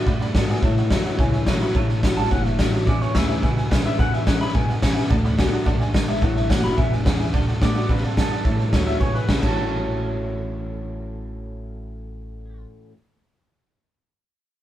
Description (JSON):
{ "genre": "rockabilly", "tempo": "215 BPM", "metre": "4/4", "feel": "straight", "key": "A major", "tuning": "A4 = 441 Hz", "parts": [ { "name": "electric guitar through a small old amp", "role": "melody", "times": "0.0-12.6 s", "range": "A4 to B5", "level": "-29 LUFS", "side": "equal", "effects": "none" }, { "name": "picked steel-string acoustic guitar", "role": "accompaniment", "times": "0.0-12.9 s", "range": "E2 to F#4", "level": "-30 LUFS", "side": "left 3 dB", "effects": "none" }, { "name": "electric guitar through a small old amp", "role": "riff", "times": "0.0-13.0 s", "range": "E2 to C#5", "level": "-29 LUFS", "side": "equal", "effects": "none" }, { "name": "upright bass", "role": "bass", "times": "0.0-12.6 s", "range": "E1 to A2", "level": "-28 LUFS", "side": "equal", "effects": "none" }, { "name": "tack piano", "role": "accompaniment", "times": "0.1-12.7 s", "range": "B4 to B5", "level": "-33 LUFS", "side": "right 2 dB", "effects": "none" }, { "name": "raw garage drum kit", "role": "drums", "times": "0.1-9.5 s", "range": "crash cymbal, hi-hat, kick drum, snare drum", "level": "-20 LUFS", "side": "equal", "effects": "none" } ], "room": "light reverb", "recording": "band playing live in one room", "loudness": "-18 LUFS", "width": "side -12 dB against mid", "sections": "0.0-7.3 A section; 7.3-9.6 B section; 9.6-11.8 C section", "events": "none", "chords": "0.0 D6; 0.6 A6; 2.9 E6; 5.1 D6; 6.2 A6; 6.8 E6; 7.3 D6; 8.4 A6; 9.0 E6; 9.4 A6" }